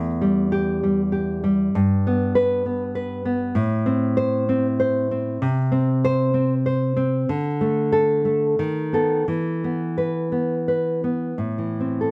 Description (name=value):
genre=romantic piece for solo classical guitar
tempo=84-100 BPM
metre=3/4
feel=rubato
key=A minor from 3.5 s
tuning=A4 = 440 Hz
part: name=nylon-string guitar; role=solo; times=0.0-12.1 s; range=E2 to C5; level=-22 LUFS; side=equal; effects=none
room=light reverb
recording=dark, warm production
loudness=-22 LUFS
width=mono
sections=0.0-11.4 A section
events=none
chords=0.0 Em; 1.7 G; 3.5 Am; 5.4 N.C.; 7.3 D5; 8.6 B7/D#; 9.3 E5; 11.4 Am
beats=0.51 1.12 | 1.74 2.34 2.94 | 3.55 4.17 4.79 | 5.41 6.03 6.65 | 7.28 7.92 8.59 | 9.29 9.99 10.68 | 11.37 11.99